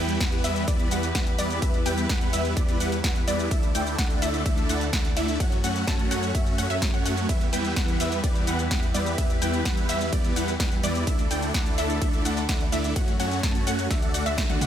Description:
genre	EDM, festival progressive house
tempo	127 BPM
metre	4/4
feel	straight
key	E dorian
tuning	A4 = 440 Hz
part	warm studio string section	sustained chords	0.0-14.7 s	D3 to B4	-34 LUFS	left 1 dB	sidechain pumping
part	wide unison pluck	arpeggios	0.0-14.7 s	D5 to A5	-33 LUFS	equal	sidechain pumping, digital delay
part	big supersaw lead	riff	0.0-14.7 s	G3 to A5	-28 LUFS	right 1 dB	phaser, sidechain pumping, digital delay
part	wide detuned saw bass	bass	0.0-14.7 s	D2 to F#2	-31 LUFS	equal	chorus, sidechain pumping
part	big-room dance drum kit	drums	0.1-14.7 s	hi-hat, ride cymbal, shaker, snare drum, toms	-32 LUFS	left 1 dB	none
part	electronic kick drum	drums	0.2-14.5 s	none	-25 LUFS	equal	none
room	little or no reverb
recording	none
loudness	-22 LUFS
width	side -10 dB against mid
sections	0.0-14.7 A section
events	band accent 14.4; drum fill 14.5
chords	0.0 Em; 3.5 Dsus2; 5.4 F#m; 7.3 Em; 11.1 Dsus2; 13.0 F#m; 13.9 D

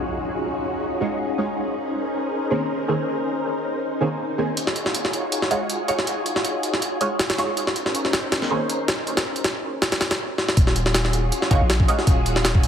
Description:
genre	drum and bass, jungle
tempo	160 BPM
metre	4/4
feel	swing 54% on 16ths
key	Eb minor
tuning	A4 = 440 Hz
part	soft string machine	sustained chords	0.0-12.7 s	Db4 to Db5	-26 LUFS	left 1 dB	ensemble chorus
part	band-passed chord stab	stabs	1.0-8.6, 11.5-11.9 s	Eb3 to Db5	-27 LUFS	right 2 dB	phaser, ensemble chorus, dub echo
part	jungle sampler-style drum kit	drums	4.6-12.7 s	hi-hat, kick drum, snare drum	-21 LUFS	equal	none
part	long sustained 808-style bass	bass	10.6-12.7 s	Eb1 to Bb1	-22 LUFS	equal	none
room	moderate lush hall reverb, RT60 2.0 s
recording	heavily compressed radio sound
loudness	-20 LUFS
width	side -8 dB against mid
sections	0.0-10.6 A section; 10.6-12.7 B section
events	stop 10.2-10.6; drum fill 10.4; drop 10.6-12.7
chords	0.0 Ebm11; 1.6 Bbm11; 4.6 Ebm11; 7.6 Bbm11; 10.6 Ebm11

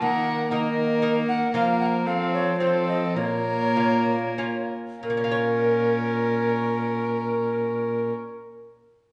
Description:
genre	classical, renaissance-style consort dance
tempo	88-119 BPM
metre	3/4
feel	straight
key	Bb minor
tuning	A4 = 440 Hz
part	warm violin	melody	0.0-8.1 s	A4 to Bb4	-33 LUFS	equal	none
part	mellow tenor recorder	second line	0.0-8.1 s	Bb4 to Gb5	-28 LUFS	equal	none
part	lute	accompaniment	0.0-8.4 s	Bb2 to Db5	-34 LUFS	equal	none
part	warm viola	accompaniment	0.0-8.1 s	Bb3 to Db4	-31 LUFS	equal	none
part	mellow trombone	bass	0.0-8.1 s	Bb2 to F3	-30 LUFS	equal	none
room	wet recital hall reverb, RT60 1.4 s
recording	recorded in a church or concert hall, nothing above 10.4 kHz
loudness	-24 LUFS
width	mono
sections	0.0-5.0 A section; 5.0-9.1 B section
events	slowing down 0.8-5.0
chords	0.0 Ebm; 1.5 Fsus4; 2.1 F; 3.2 Bbm

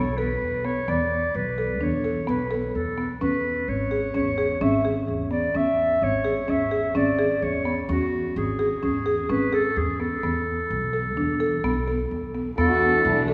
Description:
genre	contemporary instrumental, chamber music in an uneven meter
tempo	128 BPM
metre	5/4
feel	straight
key	E mixolydian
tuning	A4 = 440 Hz
part	warm clarinet	melody	0.0-13.2 s	F#4 to E5	-28 LUFS	equal	none
part	buzzing marimba with medium mallets	arpeggios	0.0-13.3 s	B3 to A4	-29 LUFS	equal	none
part	upright bass	bass	0.0-13.3 s	G#1 to E2	-32 LUFS	equal	none
part	French horn with straight mute	second line	12.6-13.3 s	D4 to F#4	-28 LUFS	equal	none
part	warm studio string section	sustained chords	12.6-13.3 s	E3 to D4	-31 LUFS	equal	none
room	wet church reverb, RT60 3.0 s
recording	recorded in a church or concert hall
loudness	-24 LUFS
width	mono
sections	0.0-12.6 A section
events	none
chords	0.0 Esus4; 3.2 C#m; 10.2 Esus4; 12.6 E7sus4

